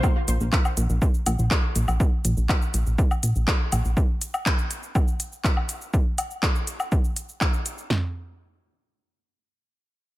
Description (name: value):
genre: melodic techno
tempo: 122 BPM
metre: 4/4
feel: straight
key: unclear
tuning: A4 = 440 Hz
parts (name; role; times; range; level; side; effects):
- techno drum kit; drums; 0.0-8.0 s; kick drum, snare drum, toms; -22 LUFS; equal; none
- techno drum kit; drums; 0.0-7.9 s; handclaps, hi-hat, shaker, woodblock; -28 LUFS; left 1 dB; none
- plucky analog bass; bass; 0.3-3.9 s; Bb1; -22 LUFS; equal; sidechain pumping
room: digital ambience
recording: none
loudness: -21 LUFS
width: side -17 dB against mid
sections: 0.0-7.9 A section; 7.9-10.2 B section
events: filter sweep on analog synth bass 0.0-4.0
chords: none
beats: | 0.03 0.53 1.02 1.51 | 2.00 2.49 2.98 3.48 | 3.97 4.46 4.95 5.44 | 5.94 6.43 6.92 7.41 | 7.90